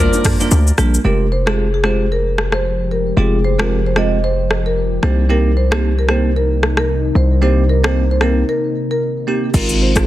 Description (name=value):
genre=afrobeats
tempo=113 BPM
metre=4/4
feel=swing 58% on 16ths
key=unclear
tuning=A4 = 441 Hz
part: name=marimba with medium mallets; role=melody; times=0.0-10.1 s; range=G4 to Eb5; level=-21 LUFS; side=equal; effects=none
part: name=warm horn section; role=second line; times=0.0-0.7 s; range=F4 to D5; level=-26 LUFS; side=left 3 dB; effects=none
part: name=bell-like tine electric piano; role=accompaniment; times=0.0-10.1 s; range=Ab3 to Bb4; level=-20 LUFS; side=right 4 dB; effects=lush chorus
part: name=hard-hitting 808-style bass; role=bass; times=0.0-10.1 s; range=F1 to D2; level=-16 LUFS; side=equal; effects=none
part: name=afro-pop drum kit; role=drums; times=0.1-10.1 s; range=crash cymbal, hi-hat, kick drum, rim click, shaker, toms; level=-19 LUFS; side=equal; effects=soft clipping on snare
part: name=bongos and congas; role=percussion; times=0.1-0.9 s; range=none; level=-27 LUFS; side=left 6 dB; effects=none
part: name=deep dark ambient pad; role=sustained chords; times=2.1-9.5 s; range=C3 to G4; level=-24 LUFS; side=left 2 dB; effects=chorus, built-in reverb, sidechain pumping
room=digital ambience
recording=dense, heavily limited modern master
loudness=-13 LUFS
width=side -14 dB against mid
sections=0.0-1.0 A section; 1.0-9.5 B section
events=break 8.5-9.5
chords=0.0 Bb; 1.0 Fmadd9; 5.0 Cm7; 9.5 Ab6